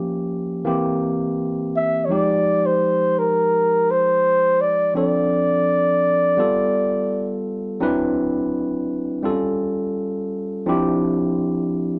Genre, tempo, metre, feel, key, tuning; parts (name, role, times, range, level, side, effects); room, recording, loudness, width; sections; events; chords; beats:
soul; 84 BPM; 4/4; straight; A4 = 439 Hz
barky tine electric piano; accompaniment; 0.0-12.0 s; E3 to B4; -24 LUFS; equal
mellow flugelhorn; melody; 1.8-7.4 s; Bb4 to E5; -20 LUFS; equal
moderate large studio reverb, RT60 1.2 s; band playing live in one room; -20 LUFS; mono
0.0-12.0 A section
0.0 Gm7b5; 0.7 C7; 2.1 Fm9; 5.0 Dm7; 6.4 G9; 7.8 Cmaj9#11; 9.2 A7b13; 10.7 Dm11
0.66 1.38 | 2.09 2.81 3.52 4.24 | 4.96 5.67 6.39 7.10 | 7.82 8.53 9.25 9.96 | 10.68 11.39